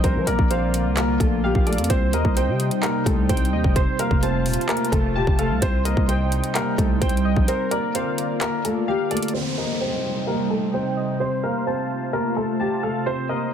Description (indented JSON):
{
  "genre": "hip hop, trap",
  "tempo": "129 BPM",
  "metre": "4/4",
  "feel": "half-time",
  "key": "C dorian",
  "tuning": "A4 = 440 Hz",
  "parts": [
    { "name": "dark baby grand piano", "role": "melody", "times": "0.0-13.5 s", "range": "G3 to C5", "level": "-24 LUFS", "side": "equal", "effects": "low-pass filter" },
    { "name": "warbly lo-fi synth keys", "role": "accompaniment", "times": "0.0-13.5 s", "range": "Bb4 to A5", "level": "-29 LUFS", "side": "equal", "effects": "chorus, low-pass filter" },
    { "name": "warbly tape-like pad", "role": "sustained chords", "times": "0.0-13.5 s", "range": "C3 to F4", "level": "-27 LUFS", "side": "right 1 dB", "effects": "chorus, built-in reverb, phaser, low-pass filter" },
    { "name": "growling 808-style bass", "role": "bass", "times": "0.0-7.5 s", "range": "Eb1 to F3", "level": "-23 LUFS", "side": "equal", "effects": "none" },
    { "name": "trap drum kit", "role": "drums", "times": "0.0-9.3 s", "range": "handclaps, hi-hat, kick drum", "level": "-23 LUFS", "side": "equal", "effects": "none" },
    { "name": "downlifter", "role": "sound effects", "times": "9.3-13.1 s", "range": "none", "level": "-31 LUFS", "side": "equal", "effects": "none" }
  ],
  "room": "little or no reverb",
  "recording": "dense, heavily limited modern master",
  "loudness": "-19 LUFS",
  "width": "side -8 dB against mid",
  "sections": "0.0-9.3 A section; 9.3-13.5 B section",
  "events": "break 7.5-9.3; filter sweep 9.3-13.5",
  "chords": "0.0 Bb; 1.9 Cm; 3.8 F; 5.6 Cm; 7.5 Bb; 9.3 Cm; 11.2 F",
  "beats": "| 0.04 0.50 0.97 1.43 | 1.90 2.37 2.83 3.29 | 3.76 4.22 4.69 5.16 | 5.62 6.08 6.55 7.02 | 7.48 7.95 8.41 8.88 | 9.34 9.81 10.27 10.74 | 11.20 11.67 12.13 12.60 | 13.06 13.53"
}